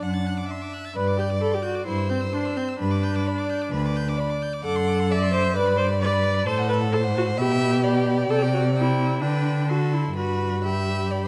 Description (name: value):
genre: quick classical-period movement for string quartet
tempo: 130 BPM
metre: 4/4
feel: straight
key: G major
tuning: A4 = 438 Hz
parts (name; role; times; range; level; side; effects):
- clear violin; melody; 0.0-11.3 s; F#5 to A6; -36 LUFS; equal; none
- clear violin; second line; 0.0-11.3 s; A4 to F#5; -32 LUFS; equal; none
- warm viola; accompaniment; 0.0-11.3 s; C4 to D5; -28 LUFS; equal; none
- rich cello; bass; 0.0-11.3 s; D2 to D3; -27 LUFS; equal; none
room: light reverb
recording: none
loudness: -23 LUFS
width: mono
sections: 0.0-11.3 A section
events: none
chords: 0.0 D/F#; 1.0 G; 1.9 C/G; 2.8 G; 4.6 D7/F#; 5.6 G; 6.5 F#dim/A; 7.4 G/B; 8.3 C; 9.2 G/D; 9.7 D7; 10.2 G